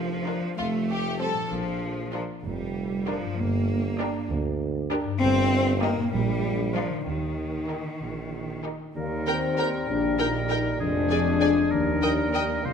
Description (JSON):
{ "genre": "cinematic, playful, whimsical film cue", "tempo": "64 BPM (dotted quarters)", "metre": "6/8", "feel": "straight", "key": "Bb major, Eb major from 5.2 s", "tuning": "A4 = 440 Hz", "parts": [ { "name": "concert harp", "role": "arpeggios", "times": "0.0-12.7 s", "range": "G2 to Bb5", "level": "-33 LUFS", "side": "left 9 dB", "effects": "none" }, { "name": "mellow tuba", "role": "bass", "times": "0.0-12.7 s", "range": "F1 to Eb2", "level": "-32 LUFS", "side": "right 4 dB", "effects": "none" }, { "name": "rich studio cello section", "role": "bass", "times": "0.0-12.7 s", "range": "Eb2 to C4", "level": "-30 LUFS", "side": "right 1 dB", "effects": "none" }, { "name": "rich studio double bass section", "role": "bass", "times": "0.0-12.7 s", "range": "F1 to F2", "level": "-33 LUFS", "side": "right 3 dB", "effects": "none" }, { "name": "warm studio violin section", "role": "melody", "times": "0.3-12.4 s", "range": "Bb4 to Ab5", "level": "-36 LUFS", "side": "left 3 dB", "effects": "none" }, { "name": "rich studio violin section", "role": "second line", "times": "0.3-12.4 s", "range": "F4 to Eb5", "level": "-34 LUFS", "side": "left 1 dB", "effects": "none" }, { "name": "rich studio viola section", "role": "accompaniment", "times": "0.3-12.4 s", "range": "C4 to Bb4", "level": "-34 LUFS", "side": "right 2 dB", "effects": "none" }, { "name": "clear oboe", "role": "second line", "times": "9.0-12.7 s", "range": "Ab4 to C5", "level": "-32 LUFS", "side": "equal", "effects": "none" }, { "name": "dark bassoon", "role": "accompaniment", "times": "9.0-12.7 s", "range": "Eb3 to Ab3", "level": "-33 LUFS", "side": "equal", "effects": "none" }, { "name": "dark French horn section", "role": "sustained chords", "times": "9.0-12.7 s", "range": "Bb3 to Eb4", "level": "-26 LUFS", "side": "left 5 dB", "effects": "none" } ], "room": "moderate scoring stage reverb, RT60 1.9 s", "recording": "minimal, uncompressed stereo recording", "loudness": "-24 LUFS", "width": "side -7 dB against mid", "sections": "0.0-9.0 A section; 9.0-12.7 B section", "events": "none", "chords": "0.0 Bb/F; 0.6 F; 1.5 Bb; 3.4 Gm; 5.2 Eb/G; 6.1 Bb; 7.1 Eb; 10.8 Ddim/F; 11.7 Eb" }